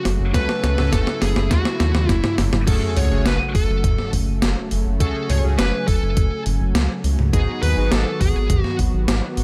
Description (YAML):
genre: synthwave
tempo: 103 BPM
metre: 4/4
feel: straight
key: F# dorian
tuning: A4 = 440 Hz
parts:
  - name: warm analog pad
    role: sustained chords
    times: 0.0-9.4 s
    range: C#3 to G#5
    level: -30 LUFS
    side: equal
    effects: chorus, sidechain pumping
  - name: round analog bass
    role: bass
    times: 0.1-9.4 s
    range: F#1 to D#2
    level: -22 LUFS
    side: equal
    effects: none
  - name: gated 80s digital drum machine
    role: drums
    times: 0.1-9.4 s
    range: crash cymbal, hi-hat, snare drum, toms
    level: -26 LUFS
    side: equal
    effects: gated reverb, gated reverb snare
  - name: high-gain lead guitar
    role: melody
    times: 0.3-8.8 s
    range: F#4 to C#5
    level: -28 LUFS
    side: equal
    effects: distortion, tape echo
  - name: analog synth brass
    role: stabs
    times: 0.3-8.0 s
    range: G#2 to A4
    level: -32 LUFS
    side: equal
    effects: chorus
  - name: electronic kick drum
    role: drums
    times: 0.3-8.9 s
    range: none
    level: -23 LUFS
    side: equal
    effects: none
  - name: sub drop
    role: sound effects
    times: 2.7-5.0 s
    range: none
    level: -31 LUFS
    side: equal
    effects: none
room: light reverb, digital ambience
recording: none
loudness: -19 LUFS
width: mono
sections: 0.0-2.7 A section; 2.7-9.4 B section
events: drum fill 0.0-2.7; impact 2.7-5.0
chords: 0.0 F#m; 2.7 F#madd9; 7.3 G#m7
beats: | 0.34 0.93 1.51 2.09 | 2.67 3.26 3.84 4.42 | 5.00 5.59 6.17 6.75 | 7.33 7.92 8.50 9.08